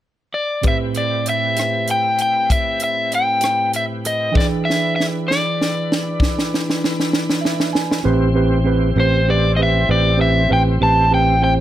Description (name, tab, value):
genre	slow blues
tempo	65 BPM (dotted quarters)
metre	12/8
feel	straight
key	A minor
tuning	A4 = 443 Hz
part	crunchy overdriven guitar	melody	0.3-11.5 s	C5 to A5	-18 LUFS	left 1 dB	plate reverb
part	overdriven tine electric piano	accompaniment	0.6-11.6 s	A2 to G#5	-23 LUFS	right 6 dB	none
part	tonewheel organ	sustained chords	0.6-11.6 s	A2 to C5	-26 LUFS	left 1 dB	slow rotary speaker, chorus vibrato
part	compact cocktail drum kit	drums	0.6-8.0 s	hi-hat, kick drum, rim click, snare drum	-19 LUFS	equal	none
part	fingered electric bass	bass	8.1-11.6 s	A1	-17 LUFS	left 1 dB	none
room	light reverb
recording	none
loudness	-15 LUFS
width	side -12 dB against mid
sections	0.6-8.0 A section; 8.0-11.6 B section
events	drum fill 4.3-8.0; tine electric piano fill 7.1-8.0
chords	0.0 N.C.; 0.6 Am7; 4.3 E7#9; 8.0 Am7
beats	| 0.65 1.57 2.50 3.42 | 4.35 5.27 6.20 7.12 | 8.04 8.97 9.89 10.81